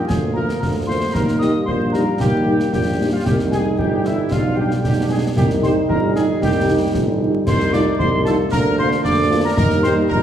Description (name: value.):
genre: military-style march for wind band.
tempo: 114 BPM.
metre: 2/4.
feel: straight.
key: Eb major.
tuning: A4 = 441 Hz.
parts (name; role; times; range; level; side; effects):
clear trumpet section; melody; 0.0-10.2 s; Fb4 to Eb5; -26 LUFS; right 1 dB; none.
mellow piccolo; second line; 0.0-10.2 s; Fb5 to Eb6; -26 LUFS; left 2 dB; none.
warm trombone section; sustained chords; 0.0-10.2 s; F3 to Eb4; -23 LUFS; right 3 dB; none.
warm tuba; bass; 0.1-10.2 s; G1 to Eb2; -20 LUFS; right 1 dB; none.
concert snare drum, concert bass drum and clash cymbals; drums; 0.1-10.2 s; none; -22 LUFS; equal; none.
dark French horn section; accompaniment; 0.4-9.9 s; G3 to G4; -25 LUFS; left 1 dB; none.
room: wet recital hall reverb, RT60 1.6 s.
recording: recorded in a church or concert hall, vinyl crackle.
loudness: -15 LUFS.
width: side -9 dB against mid.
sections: 0.0-10.2 A section.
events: none.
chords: 0.1 Bb/D; 1.1 Eb; 3.3 Cm; 4.3 G/B; 5.4 Cm; 7.5 F7/C; 8.5 Bb/D; 9.6 Eb.